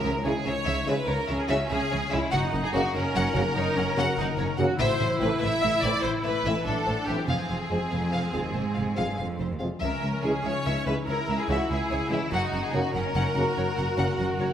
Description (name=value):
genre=cinematic, heroic adventure film score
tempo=96 BPM (dotted quarters)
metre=12/8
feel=straight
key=unclear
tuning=A4 = 441 Hz
part: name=rich symphonic violin section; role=melody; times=0.0-14.5 s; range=C5 to F#5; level=-34 LUFS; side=left 2 dB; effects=none
part: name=clear symphonic violin section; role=second line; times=0.0-14.5 s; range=E4 to E5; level=-29 LUFS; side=left 1 dB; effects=none
part: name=concert harp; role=arpeggios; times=0.0-14.5 s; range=F#2 to G5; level=-34 LUFS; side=left 6 dB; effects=none
part: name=clear symphonic cello section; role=bass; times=0.0-14.5 s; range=C#2 to C#3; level=-33 LUFS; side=right 2 dB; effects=none
part: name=rich chamber double bass section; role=bass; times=0.0-14.5 s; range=F1 to C#2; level=-33 LUFS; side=right 2 dB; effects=none
part: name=mellow French horn section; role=sustained chords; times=0.2-14.0 s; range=C4 to Ab4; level=-35 LUFS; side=left 2 dB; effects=none
part: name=warm trombone section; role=sustained chords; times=0.2-14.1 s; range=C#3 to A#3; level=-35 LUFS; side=right 2 dB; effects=none
part: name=rich chamber viola section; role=accompaniment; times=1.1-14.5 s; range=C4 to F#4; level=-32 LUFS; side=right 1 dB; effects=none
room=wet scoring stage reverb, RT60 1.8 s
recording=none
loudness=-24 LUFS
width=side -9 dB against mid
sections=0.0-14.5 A section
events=none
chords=0.0 C#m; 2.3 F#; 4.8 Am; 7.3 Fm; 9.8 C#m; 12.3 F#